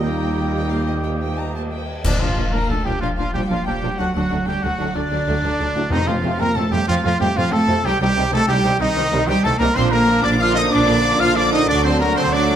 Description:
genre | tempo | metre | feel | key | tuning
cinematic, heroic adventure film score | 124 BPM (dotted quarters) | 12/8 | straight | Bb major | A4 = 439 Hz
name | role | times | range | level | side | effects
rich symphonic violin section | melody | 0.0-12.6 s | D5 to F6 | -29 LUFS | left 4 dB | none
mellow silver concert flute | second line | 0.0-12.6 s | D5 to F6 | -28 LUFS | left 2 dB | none
rich studio violin section | second line | 0.0-12.6 s | Bb3 to Bb5 | -29 LUFS | left 1 dB | none
warm clarinet | second line | 0.0-1.8 s | Bb3 | -33 LUFS | left 3 dB | none
warm oboe | second line | 0.0-12.6 s | D4 to G5 | -28 LUFS | equal | none
rich symphonic viola section | accompaniment | 0.0-12.6 s | D3 to G4 | -27 LUFS | right 2 dB | none
dark trombone section | sustained chords | 0.0-12.6 s | A2 to A3 | -30 LUFS | right 3 dB | none
mellow French horn section | sustained chords | 0.0-12.6 s | A3 to F#4 | -30 LUFS | left 4 dB | none
warm trumpet | stabs | 0.0-12.6 s | D4 to F5 | -24 LUFS | right 2 dB | none
clear symphonic double bass section | bass | 0.0-12.6 s | Bb1 to F2 | -24 LUFS | right 2 dB | none
rich symphonic cello section | bass | 0.0-12.6 s | D3 to F4 | -23 LUFS | right 1 dB | none
clash cymbals and concert bass drum | percussion | 2.0-2.7 s | none | -26 LUFS | left 1 dB | none
timpani | percussion | 5.9-6.4 s | F2 | -26 LUFS | left 1 dB | none
room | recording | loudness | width
moderate recital hall reverb, RT60 1.4 s | none | -16 LUFS | side -9 dB against mid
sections
0.0-2.0 A section; 2.0-12.6 B section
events
band accent 2.0-2.4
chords
0.0 Eb; 2.0 Bb; 4.0 D; 5.9 F; 7.8 Cm; 9.8 Bb; 11.7 D

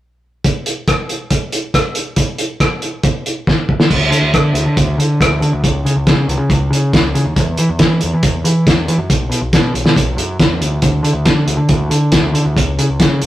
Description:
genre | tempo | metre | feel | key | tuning
indie rock | 138 BPM | 4/4 | straight | unclear | A4 = 440 Hz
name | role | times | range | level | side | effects
cloth-damped thuddy drum kit | drums | 0.4-13.3 s | crash cymbal, hi-hat, kick drum, rim click, snare drum | -14 LUFS | equal | none
growling picked electric bass | bass | 3.9-13.3 s | B1 to E3 | -15 LUFS | equal | overdrive
room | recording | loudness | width
light reverb | rough rehearsal-room recording, warm saturation, faint mains hum | -12 LUFS | side -14 dB against mid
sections
0.4-3.9 A section; 3.9-13.3 B section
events
drum fill 3.5-3.9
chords
none

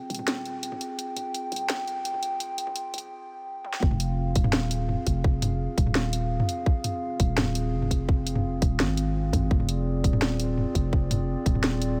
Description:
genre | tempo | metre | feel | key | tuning
half-time drum and bass | 169 BPM | 4/4 | half-time | F dorian | A4 = 441 Hz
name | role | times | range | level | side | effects
dark analog pad | sustained chords | 0.0-12.0 s | C4 to G5 | -34 LUFS | equal | subtle chorus, sidechain pumping
growling 808-style bass | bass | 0.1-12.0 s | Eb1 to Ab1 | -30 LUFS | equal | none
drum and bass drum kit | drums | 0.1-11.9 s | hi-hat, snare drum, toms | -31 LUFS | equal | small room ambience
electronic kick drum | drums | 3.8-11.5 s | none | -26 LUFS | equal | small room ambience
room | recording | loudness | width
light reverb | high-pass filter | -26 LUFS | mono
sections
0.0-3.8 A section; 3.8-12.0 B section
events
build-up 0.0-3.8; filter sweep on analog synth pad 0.0-3.8; break 3.1-3.8; drum fill 3.6; drop 3.8-12.0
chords
0.0 Fm

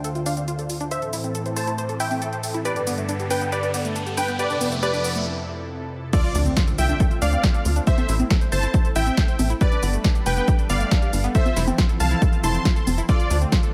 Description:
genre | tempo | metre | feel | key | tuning
uplifting trance | 138 BPM | 4/4 | straight | unclear | A4 = 439 Hz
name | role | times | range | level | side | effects
supersaw stab | melody | 0.0-13.4 s | F4 to C6 | -30 LUFS | equal | sidechain pumping, low-pass filter, dub echo
plucky unison lead | second line | 0.0-13.4 s | D5 to C6 | -36 LUFS | equal | none
analog string pad | sustained chords | 0.0-13.7 s | D2 to C5 | -33 LUFS | equal | ensemble chorus, sidechain pumping
unison pluck | arpeggios | 0.0-13.7 s | A3 to C5 | -33 LUFS | equal | sidechain pumping, dub echo
punchy analog drum machine | drums | 0.0-13.7 s | congas, crash cymbal, hi-hat, shaker, snare drum | -31 LUFS | equal | overdrive, sidechain pumping on hats, studio reverb, sidechain pumping on perc, sidechain pumping on cymbals
riser and impact | sound effects | 0.9-7.9 s | none | -36 LUFS | equal | none
electronic kick drum | drums | 6.1-13.6 s | none | -22 LUFS | equal | overdrive, studio reverb
tight sequencer bass | bass | 6.3-13.5 s | F1 to D2 | -24 LUFS | equal | sidechain pumping
room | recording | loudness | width
light reverb, digital ambience | none | -22 LUFS | mono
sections
0.0-6.1 A section; 6.1-13.7 B section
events
build-up 0.0-6.1; filter sweep on supersaw synth 0.0-6.1; riser 0.9-5.3; break 5.3-6.1; drop 6.1-13.7; impact 6.1-7.9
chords
0.0 Dm7; 0.9 Am; 2.7 Gadd9; 4.4 Fmaj7; 6.1 Dm7; 7.9 Am; 9.6 Gadd9; 11.3 Fmaj7; 13.1 Dm7

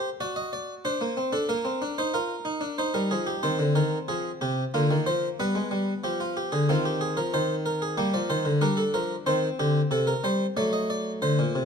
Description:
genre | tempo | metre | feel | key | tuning
classical, baroque-style 3-part fugue for harpsichord | 92 BPM | 4/4 | straight | C minor | A4 = 440 Hz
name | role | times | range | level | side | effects
harpsichord | solo | 0.0-11.7 s | Bb2 to Eb5 | -24 LUFS | equal | none
room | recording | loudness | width
light reverb | close, detailed microphones | -24 LUFS | side -6 dB against mid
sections
0.0-2.8 A section; 2.8-11.7 B section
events
none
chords
0.2 D7/F#; 1.5 Bbadd9; 2.8 Cm; 4.1 Fm; 5.4 G7; 6.7 Cm/Eb; 8.0 Gm; 9.3 Cm; 10.6 D7/F#

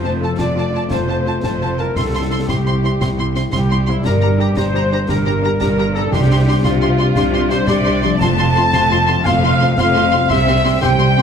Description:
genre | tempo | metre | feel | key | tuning
cinematic, heroic adventure film score | 115 BPM (dotted quarters) | 12/8 | straight | F major | A4 = 441 Hz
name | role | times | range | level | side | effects
warm symphonic violin section | melody | 0.0-11.2 s | A5 to C6 | -24 LUFS | left 2 dB | none
warm clarinet | second line | 0.0-11.2 s | E4 to A5 | -26 LUFS | left 2 dB | none
warm symphonic violin section | second line | 0.0-11.2 s | E4 to A5 | -25 LUFS | equal | none
dark symphonic viola section | accompaniment | 0.0-11.2 s | C4 to G4 | -25 LUFS | right 2 dB | none
mellow French horn section | sustained chords | 0.0-11.2 s | G3 to F4 | -23 LUFS | left 6 dB | none
concert harp | arpeggios | 0.0-11.2 s | G2 to D5 | -28 LUFS | left 9 dB | none
mellow trumpet section | stabs | 0.0-11.2 s | E4 to A5 | -22 LUFS | left 1 dB | none
clear symphonic cello section | bass | 0.0-11.2 s | C2 to C3 | -23 LUFS | right 3 dB | none
warm symphonic double bass section | bass | 0.0-11.2 s | F1 to C2 | -20 LUFS | right 2 dB | none
timpani | percussion | 0.0-0.3, 6.1-6.6 s | F2 to C3 | -24 LUFS | equal | none
concert snare drum, concert bass drum and clash cymbals | drums | 0.4-11.0 s | none | -24 LUFS | equal | none
room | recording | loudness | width
wet recital hall reverb, RT60 1.5 s | none | -13 LUFS | side -7 dB against mid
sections
0.0-11.2 A section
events
none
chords
0.0 F; 2.0 C; 4.0 Gm; 6.1 Csus2; 8.2 F; 10.3 C

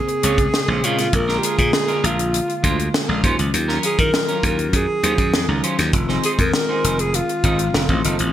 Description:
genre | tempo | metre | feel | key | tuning
polished 1980s jazz-funk pop | 100 BPM | 4/4 | straight | Bb minor | A4 = 440 Hz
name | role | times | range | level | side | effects
breathy alto saxophone | melody | 0.0-8.0 s | F4 to Bb4 | -22 LUFS | equal | none
mellow tine electric piano | accompaniment | 0.0-8.3 s | Db3 to Ab4 | -25 LUFS | left 1 dB | medium stereo tremolo, wide subtle chorus
clean electric guitar | riff | 0.1-8.2 s | Gb3 to Eb5 | -26 LUFS | right 4 dB | lush chorus
tight funk drum kit | drums | 0.1-8.3 s | hi-hat, kick drum, snare drum | -21 LUFS | equal | gated reverb
glassy slap bass | bass | 0.2-8.3 s | F1 to Eb3 | -21 LUFS | equal | none
room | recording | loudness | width
moderate lush hall reverb, RT60 1.7 s, studio reverb | bright 1980s-style digital production | -16 LUFS | side -11 dB against mid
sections
0.0-8.3 A section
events
none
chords
0.0 Bbm9; 1.1 Bb7; 3.2 Ebm9; 5.9 Fm7; 7.7 F7

